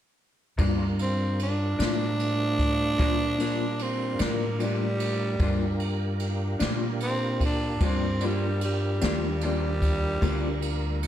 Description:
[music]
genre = slow blues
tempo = 50 BPM (dotted quarters)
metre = 12/8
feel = straight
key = G minor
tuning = A4 = 440 Hz
[part]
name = electric guitar through a small old amp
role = accompaniment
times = 0.6-10.5 s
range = G2 to D4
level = -32 LUFS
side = left 4 dB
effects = harmonic tremolo, slapback echo
[part]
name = tonewheel organ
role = sustained chords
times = 0.6-11.1 s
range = G3 to Bb4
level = -35 LUFS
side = right 1 dB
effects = chorus vibrato, slow rotary speaker
[part]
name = upright bass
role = bass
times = 0.6-11.1 s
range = D2 to Bb2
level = -28 LUFS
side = equal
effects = none
[part]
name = jazz brush drum kit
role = drums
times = 0.6-11.1 s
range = kick drum, ride cymbal, snare drum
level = -30 LUFS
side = equal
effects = none
[part]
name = growling tenor saxophone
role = melody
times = 1.0-11.0 s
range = G3 to D4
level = -29 LUFS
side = right 1 dB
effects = none
[sound]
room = light reverb, studio ambience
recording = none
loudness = -24 LUFS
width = side -11 dB against mid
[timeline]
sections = 0.6-11.1 A section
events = tenor saxophone solo 0.6-11.1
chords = 0.6 Gm7

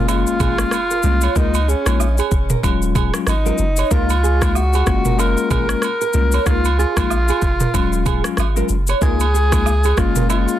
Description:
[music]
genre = afrobeats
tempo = 94 BPM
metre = 4/4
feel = swing 58% on 16ths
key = Db major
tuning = A4 = 441 Hz
[part]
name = breathy alto saxophone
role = melody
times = 0.0-10.6 s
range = Db4 to Bb4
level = -22 LUFS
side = equal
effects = ping-pong delay
[part]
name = bell-like tine electric piano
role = accompaniment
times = 0.0-10.6 s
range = Gb3 to F4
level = -22 LUFS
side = left 9 dB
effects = none
[part]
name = nylon-string guitar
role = riff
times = 0.0-10.3 s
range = Ab4 to Db5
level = -26 LUFS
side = right 8 dB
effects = ping-pong delay
[part]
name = punchy sub bass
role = bass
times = 0.0-10.5 s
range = Eb1 to Db2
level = -18 LUFS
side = equal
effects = none
[part]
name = impact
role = sound effects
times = 0.4-1.4 s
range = none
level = -40 LUFS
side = equal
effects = none
[part]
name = afro-pop drum kit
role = drums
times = 0.1-10.6 s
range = kick drum, rim click, shaker, toms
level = -20 LUFS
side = equal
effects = soft clipping on snare
[part]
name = agogo bells and woodblock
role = percussion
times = 0.1-10.5 s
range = none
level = -27 LUFS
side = right 12 dB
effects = none
[sound]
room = little or no reverb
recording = dense, heavily limited modern master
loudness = -15 LUFS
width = side -12 dB against mid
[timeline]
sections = 0.0-10.6 A section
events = impact 0.0-1.4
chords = 0.0 Gbmaj9; 1.4 Db69; 2.6 Ebm11; 3.9 Db69; 4.9 Gbmaj9; 6.5 Db69; 7.7 Ebm11; 9.0 Db69; 10.0 Gbmaj9

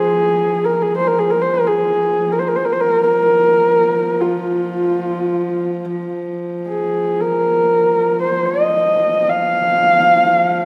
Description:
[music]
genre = mongolian traditional, Mongolian folk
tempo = free time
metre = none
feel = none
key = F yu mode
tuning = A4 = 441 Hz
[part]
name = dark horsehead fiddle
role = melody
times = 0.0-10.7 s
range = F4 to F5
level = -17 LUFS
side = equal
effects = none
[part]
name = rich horsehead fiddle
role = drone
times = 0.0-10.7 s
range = F3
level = -26 LUFS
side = equal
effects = none
[sound]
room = wet concert hall reverb, RT60 2.4 s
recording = none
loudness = -16 LUFS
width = mono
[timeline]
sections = 0.0-10.7 A section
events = none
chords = none

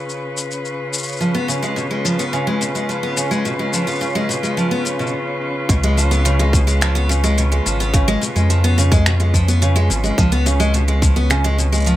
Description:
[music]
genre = folktronica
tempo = 107 BPM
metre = 4/4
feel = straight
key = Db mixolydian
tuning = A4 = 442 Hz
[part]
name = muted string quartet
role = sustained chords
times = 0.0-12.0 s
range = Db3 to Cb5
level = -24 LUFS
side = equal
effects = none
[part]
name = organic electronic drum kit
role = drums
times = 0.1-12.0 s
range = finger snaps, hi-hat, shaker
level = -23 LUFS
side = left 2 dB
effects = none
[part]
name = picked steel-string acoustic guitar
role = arpeggios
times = 1.2-12.0 s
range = Cb3 to Cb4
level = -20 LUFS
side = equal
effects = tape echo
[part]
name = warm sub bass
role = bass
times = 5.7-12.0 s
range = Ab1 to F2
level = -16 LUFS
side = equal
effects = none
[part]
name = electronic kick drum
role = drums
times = 5.7-11.1 s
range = none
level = -16 LUFS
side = equal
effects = none
[sound]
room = little or no reverb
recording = faint mains hum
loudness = -15 LUFS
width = side -14 dB against mid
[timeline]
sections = 0.0-5.7 A section; 5.7-12.0 B section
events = break 5.1-5.7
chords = 0.0 Db7

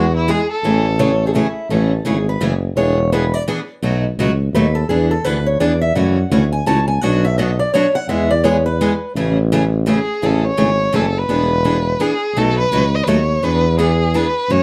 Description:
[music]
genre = acoustic string swing (jazz manouche)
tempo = 169 BPM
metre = 3/4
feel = swing 61% on 8ths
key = A major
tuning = A4 = 439 Hz
[part]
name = warm violin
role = melody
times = 0.0-1.3, 9.9-14.6 s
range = E4 to D#5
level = -21 LUFS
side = equal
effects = plate reverb
[part]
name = picked steel-string acoustic guitar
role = accompaniment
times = 0.0-14.6 s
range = B2 to G#4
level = -21 LUFS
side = equal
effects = none
[part]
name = warm tuba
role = bass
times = 0.0-14.6 s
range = E1 to F#2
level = -20 LUFS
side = equal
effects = none
[part]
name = picked acoustic archtop guitar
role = second line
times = 1.0-9.1 s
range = E4 to A5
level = -22 LUFS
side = equal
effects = none
[sound]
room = light reverb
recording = dark, warm production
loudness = -17 LUFS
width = mono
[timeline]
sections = 0.0-1.7 A section; 1.7-10.2 B section; 10.2-14.6 A section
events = steel-string acoustic guitar solo 1.7-10.2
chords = 0.0 E; 0.6 Amaj7; 2.8 E7; 3.8 B7; 4.9 E7; 6.0 F#m7; 7.0 Bm; 8.1 E; 9.2 Amaj7; 11.3 E7; 12.4 B7; 13.4 E7

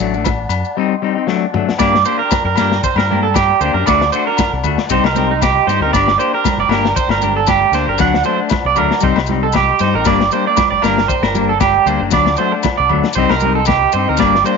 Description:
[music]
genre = highlife guitar band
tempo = 116 BPM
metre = 4/4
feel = swing 55% on 16ths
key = G harmonic minor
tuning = A4 = 437 Hz
[part]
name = clean electric guitar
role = accompaniment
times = 0.0-14.6 s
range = F#3 to G4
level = -19 LUFS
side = left 15 dB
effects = none
[part]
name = mellow tonewheel organ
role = sustained chords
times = 0.0-14.6 s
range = D5 to C6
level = -24 LUFS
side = left 2 dB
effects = fast rotary speaker
[part]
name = deep dub fingered electric bass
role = bass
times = 0.0-14.4 s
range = F#1 to G2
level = -20 LUFS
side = left 1 dB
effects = none
[part]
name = crunchy breakbeat drum kit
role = drums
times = 0.0-14.5 s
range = hi-hat, kick drum, rim click, snare drum, toms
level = -20 LUFS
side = left 5 dB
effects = none
[part]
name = maracas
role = percussion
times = 0.1-14.6 s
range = none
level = -28 LUFS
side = left 16 dB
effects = none
[part]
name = agogo bells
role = percussion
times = 0.2-14.3 s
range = none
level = -25 LUFS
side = left 12 dB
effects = none
[part]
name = congas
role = percussion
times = 0.3-14.3 s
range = none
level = -25 LUFS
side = right 11 dB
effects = none
[part]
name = electric guitar at the edge of break-up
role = arpeggios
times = 1.8-14.6 s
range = Eb4 to F#5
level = -15 LUFS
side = right 10 dB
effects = lush chorus, slapback echo
[sound]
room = moderate echo chamber reverb, RT60 2.0 s, studio reverb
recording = 1960s-style stereo with parts hard left and right, nothing above 7.5 kHz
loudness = -12 LUFS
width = side -5 dB against mid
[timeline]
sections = 0.0-1.8 A section; 1.8-14.6 B section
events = clean electric guitar solo 0.0-1.8; drum fill 1.3-1.8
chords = 0.0 D; 0.8 Cm; 1.3 D; 1.8 Gm; 3.9 D; 4.9 Cm; 5.9 Gm; 8.0 D; 9.0 Cm; 10.1 Gm; 12.1 D; 13.2 Cm

